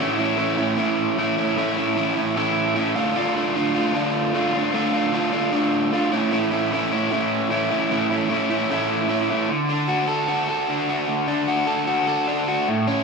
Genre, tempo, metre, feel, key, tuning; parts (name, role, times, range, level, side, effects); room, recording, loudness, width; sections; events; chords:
rock; 152 BPM; 4/4; straight; A4 = 440 Hz
overdriven electric guitar; solo; 0.0-13.0 s; A2 to A4; -19 LUFS; right 1 dB; tape echo
light reverb, digital ambience; rough home demo mix, studio ambience; -19 LUFS; side -4 dB against mid
0.0-9.5 A section; 9.5-13.0 B section
0.0 A; 3.0 Dm; 6.1 A; 9.5 D